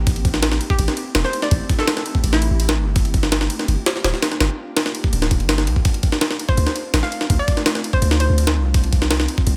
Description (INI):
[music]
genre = drum and bass, jungle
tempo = 166 BPM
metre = 4/4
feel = straight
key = D minor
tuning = A4 = 439 Hz
[part]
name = ethereal airy pad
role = sustained chords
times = 0.0-9.6 s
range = G3 to G4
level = -34 LUFS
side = equal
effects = ensemble chorus, built-in reverb
[part]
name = long sustained 808-style bass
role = bass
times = 0.0-9.6 s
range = D1 to D2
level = -22 LUFS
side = equal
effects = tube saturation
[part]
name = jungle sampler-style drum kit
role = drums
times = 0.1-9.6 s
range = kick drum, ride cymbal, snare drum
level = -21 LUFS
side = equal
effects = none
[part]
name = hollow square pluck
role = melody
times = 0.7-2.7, 6.5-8.7 s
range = E4 to F5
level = -29 LUFS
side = equal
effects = chorus, dub echo
[sound]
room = digital ambience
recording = none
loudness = -19 LUFS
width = mono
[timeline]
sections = 0.0-5.9 A section; 5.9-9.6 A section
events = drop 0.0-5.9, 5.9-9.6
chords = 0.1 Am7; 3.0 Gm7; 5.9 Dm7; 8.7 Cm7